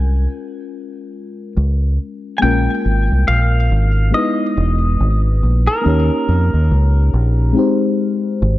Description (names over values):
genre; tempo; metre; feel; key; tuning
lovers rock reggae; 70 BPM; 4/4; swing 60% on 16ths; unclear; A4 = 440 Hz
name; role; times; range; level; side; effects
twangy electric guitar; melody; 0.0-8.6 s; Bb4 to Ab5; -22 LUFS; equal; spring reverb, tape echo
mellow FM electric piano; accompaniment; 0.0-8.6 s; Ab3 to Db5; -20 LUFS; left 2 dB; chorus, phaser
deep dub fingered electric bass; bass; 0.0-8.6 s; E1 to F2; -14 LUFS; equal; none
room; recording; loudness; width
little or no reverb; dry, close 1970s-style studio recording; -14 LUFS; side -16 dB against mid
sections
0.0-2.4 A section; 2.4-8.6 B section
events
none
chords
0.0 Db6; 2.4 Bbm7; 4.1 Emaj7; 5.8 Eb7; 7.5 Abmaj7